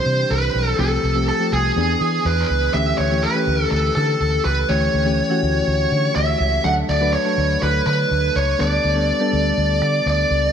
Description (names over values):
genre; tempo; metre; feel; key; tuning
1980s-style pop; 123 BPM; 4/4; straight; unclear; A4 = 440 Hz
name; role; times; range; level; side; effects
high-gain lead guitar; melody; 0.0-10.5 s; Ab4 to F#5; -19 LUFS; right 1 dB; distortion
soft electric-piano-like synth keys; accompaniment; 0.0-10.5 s; E3 to B4; -23 LUFS; left 1 dB; chorus
vintage muted fingered electric bass; bass; 0.1-10.5 s; B1 to E3; -21 LUFS; equal; none
room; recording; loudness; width
moderate lush hall reverb, RT60 2.8 s; none; -16 LUFS; side -8 dB against mid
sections
0.0-2.7 A section; 2.7-10.5 A section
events
none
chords
0.0 C; 0.8 Fadd9/C; 1.8 E7; 2.7 A7; 6.6 D; 8.6 Gadd9/D